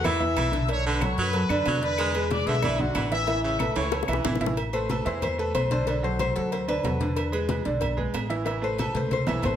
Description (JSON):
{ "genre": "latin, salsa", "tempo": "185 BPM", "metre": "4/4", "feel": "straight", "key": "A major", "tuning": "A4 = 440 Hz", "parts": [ { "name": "warm trumpet section", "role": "melody", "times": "0.0-4.4 s", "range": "F#4 to E6", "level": "-29 LUFS", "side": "left 4 dB", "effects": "slapback echo" }, { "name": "bright baritone saxophone", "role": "second line", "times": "0.0-4.4 s", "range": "C#3 to G#3", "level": "-31 LUFS", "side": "right 3 dB", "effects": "none" }, { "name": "bright upright piano", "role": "accompaniment", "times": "0.0-9.6 s", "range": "D3 to E5", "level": "-28 LUFS", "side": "right 2 dB", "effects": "none" }, { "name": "upright bass", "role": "bass", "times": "0.0-9.6 s", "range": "A1 to F#2", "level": "-30 LUFS", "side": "equal", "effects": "none" }, { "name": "agogo bells and timbales", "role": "percussion", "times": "0.0-9.6 s", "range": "none", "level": "-35 LUFS", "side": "right 6 dB", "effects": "none" }, { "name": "claves", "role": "percussion", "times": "0.0-4.2 s", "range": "none", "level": "-40 LUFS", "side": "left 6 dB", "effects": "none" }, { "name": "congas", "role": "percussion", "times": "0.0-9.5 s", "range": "none", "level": "-33 LUFS", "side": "left 1 dB", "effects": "none" }, { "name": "cowbell and bongos", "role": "percussion", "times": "0.0-9.6 s", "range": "none", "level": "-36 LUFS", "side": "left 6 dB", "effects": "none" }, { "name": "Cuban tres", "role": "melody", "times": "4.7-9.6 s", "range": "A4 to C5", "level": "-29 LUFS", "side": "left 4 dB", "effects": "none" } ], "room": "moderate large studio reverb, RT60 1.0 s", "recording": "none", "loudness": "-23 LUFS", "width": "side -10 dB against mid", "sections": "0.0-4.6 A section; 4.6-9.6 B section", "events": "drum fill 3.8-4.6, 8.9-9.6; Cuban tres solo 4.6-9.6", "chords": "0.0 Asus2 (rootless); 0.7 Bm7; 2.0 E7; 3.3 Aadd9; 4.6 Asus2; 5.9 Bm7; 7.2 E7; 8.5 Aadd9" }